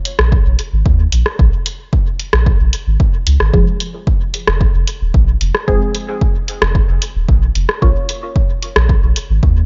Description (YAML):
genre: dub techno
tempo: 112 BPM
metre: 4/4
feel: straight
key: F minor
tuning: A4 = 439 Hz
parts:
  - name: punchy analog drum machine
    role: drums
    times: 0.1-9.3 s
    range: hi-hat, rim click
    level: -20 LUFS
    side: equal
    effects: none
  - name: soft dub sub bass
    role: bass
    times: 0.2-9.6 s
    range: Eb1 to Eb2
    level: -16 LUFS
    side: equal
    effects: sidechain pumping
  - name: electronic kick drum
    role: drums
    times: 0.3-9.5 s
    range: none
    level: -17 LUFS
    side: equal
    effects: none
  - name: filtered dub chord stab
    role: stabs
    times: 3.5-7.9 s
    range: F3 to Db5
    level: -25 LUFS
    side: equal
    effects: phaser, sidechain pumping, dub echo
room: little or no reverb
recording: nothing above 7.5 kHz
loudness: -15 LUFS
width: mono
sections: 0.0-9.7 A section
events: filter sweep on synth stab 0.0-9.7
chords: 0.0 N.C.; 3.5 Fm; 7.8 Bbm